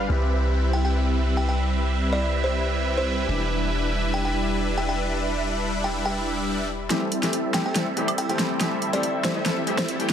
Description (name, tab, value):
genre	future bass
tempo	141 BPM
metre	4/4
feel	swing 53% on 16ths, half-time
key	A minor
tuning	A4 = 440 Hz
part	clear baby grand piano	accompaniment	0.0-10.1 s	E3 to B4	-33 LUFS	left 5 dB	ping-pong delay
part	airy breathy pad	sustained chords	0.0-10.1 s	E4 to B5	-36 LUFS	left 2 dB	chorus
part	supersaw chords	riff	0.0-10.1 s	G3 to G5	-26 LUFS	right 1 dB	phaser, cassette tape, low-pass filter
part	long sustained 808-style bass	bass	0.0-6.9 s	E1 to C2	-26 LUFS	equal	none
part	buzzing kalimba	melody	0.7-10.1 s	C5 to G5	-31 LUFS	equal	digital delay
part	big-room dance drum kit	drums	6.9-10.1 s	hi-hat, snare drum, woodblock	-26 LUFS	equal	overdrive, low-pass filter on snare, small room ambience, low-pass filter on hats, low-pass filter on perc
part	riser	sound effects	8.1-10.1 s	none	-41 LUFS	left 1 dB	none
room	light reverb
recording	none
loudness	-22 LUFS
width	side -9 dB against mid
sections	0.0-6.9 A section; 6.9-10.1 B section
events	build-up 6.9-10.1; drum fill 6.9-10.1; filter sweep on supersaw synth 6.9-10.1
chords	0.1 Cmaj7; 3.3 Em7; 6.9 Am7